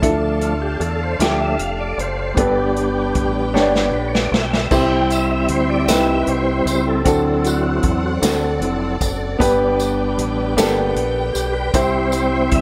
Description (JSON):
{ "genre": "slow gospel", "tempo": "51 BPM (dotted quarters)", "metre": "6/8", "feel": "straight", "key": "C major", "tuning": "A4 = 440 Hz", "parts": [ { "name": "warm upright piano", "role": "accompaniment", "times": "0.0-12.6 s", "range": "G2 to D5", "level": "-23 LUFS", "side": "equal", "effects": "none" }, { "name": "dark studio string section", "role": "sustained chords", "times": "0.0-12.6 s", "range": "C4 to A5", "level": "-31 LUFS", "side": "equal", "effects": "none" }, { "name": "tonewheel organ", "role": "sustained chords", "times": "0.0-12.6 s", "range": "F3 to G5", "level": "-23 LUFS", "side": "equal", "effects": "slow rotary speaker, chorus vibrato" }, { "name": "deep dub fingered electric bass", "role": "bass", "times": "0.0-12.6 s", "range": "F1 to E2", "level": "-27 LUFS", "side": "equal", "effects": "none" }, { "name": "swinging big-band drum kit", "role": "drums", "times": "0.0-12.6 s", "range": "crash cymbal, hi-hat, kick drum, snare drum", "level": "-24 LUFS", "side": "equal", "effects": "none" }, { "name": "tambourine", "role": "percussion", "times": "4.7-12.5 s", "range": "none", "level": "-32 LUFS", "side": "equal", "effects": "none" } ], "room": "moderate large studio reverb, RT60 1.3 s, small room ambience", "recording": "none", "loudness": "-18 LUFS", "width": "mono", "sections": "0.0-12.6 A section", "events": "tonewheel organ solo 0.0-12.6; drum fill 3.5-4.7", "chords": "0.0 Dm; 2.4 G; 4.7 C; 7.1 D7; 9.4 G; 11.7 C", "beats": "| 0.03 1.20 | 2.37 3.55 | 4.72 5.89 | 7.06 8.23 | 9.40 10.57 | 11.74" }